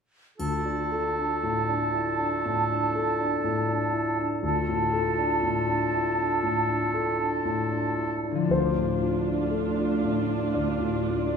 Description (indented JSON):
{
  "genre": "cinematic, emotional film score for orchestra",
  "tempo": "59 BPM",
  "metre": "4/4",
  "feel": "rubato",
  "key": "D minor",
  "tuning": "A4 = 441 Hz",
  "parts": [
    { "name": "clear oboe", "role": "second line", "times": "0.4-8.1 s", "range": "A4", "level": "-31 LUFS", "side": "right 2 dB", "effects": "none" },
    { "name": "mellow hollow large flute ensemble", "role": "second line", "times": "0.4-8.1 s", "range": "A5", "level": "-29 LUFS", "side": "right 3 dB", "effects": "none" },
    { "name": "warm clarinet", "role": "second line", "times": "0.4-8.1 s", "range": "F4", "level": "-33 LUFS", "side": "equal", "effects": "none" },
    { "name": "dark concert grand piano", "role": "accompaniment", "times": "0.4-11.4 s", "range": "D2 to D5", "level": "-28 LUFS", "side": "left 2 dB", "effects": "none" },
    { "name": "triangle", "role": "percussion", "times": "0.4-2.4 s", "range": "none", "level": "-50 LUFS", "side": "left 1 dB", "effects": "none" },
    { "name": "concert harp", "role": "arpeggios", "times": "8.3-11.4 s", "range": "D3 to A4", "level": "-31 LUFS", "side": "left 5 dB", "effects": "none" },
    { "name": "dark symphonic viola section", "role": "accompaniment", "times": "8.5-11.4 s", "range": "D4 to F4", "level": "-31 LUFS", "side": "equal", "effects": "none" },
    { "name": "warm studio cello section", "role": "bass", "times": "8.5-11.4 s", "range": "D2", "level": "-30 LUFS", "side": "right 7 dB", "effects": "none" }
  ],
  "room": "wet scoring stage reverb, RT60 1.7 s",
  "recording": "minimal, uncompressed stereo recording",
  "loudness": "-24 LUFS",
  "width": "side -6 dB against mid",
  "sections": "0.4-8.5 A section; 8.5-11.4 B section",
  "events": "none",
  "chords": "0.4 Dm",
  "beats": "| 0.39 1.43 2.45 3.44 | 4.43 5.43 6.42 7.45 | 8.49 9.52 10.54"
}